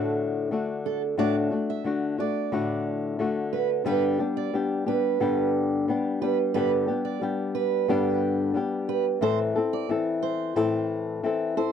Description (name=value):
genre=pop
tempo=90 BPM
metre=4/4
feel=straight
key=G major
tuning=A4 = 438 Hz
part: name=flamenco guitar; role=accompaniment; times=0.0-11.7 s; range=G2 to A4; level=-25 LUFS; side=left 4 dB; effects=none
part: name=fingerpicked steel-string acoustic guitar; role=arpeggios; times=0.0-11.7 s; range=A4 to E5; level=-29 LUFS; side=right 15 dB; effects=none
room=light reverb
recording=dry, close 1970s-style studio recording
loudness=-24 LUFS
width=side -8 dB against mid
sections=0.0-11.7 A section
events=none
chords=0.0 D/A; 3.9 G; 9.2 Am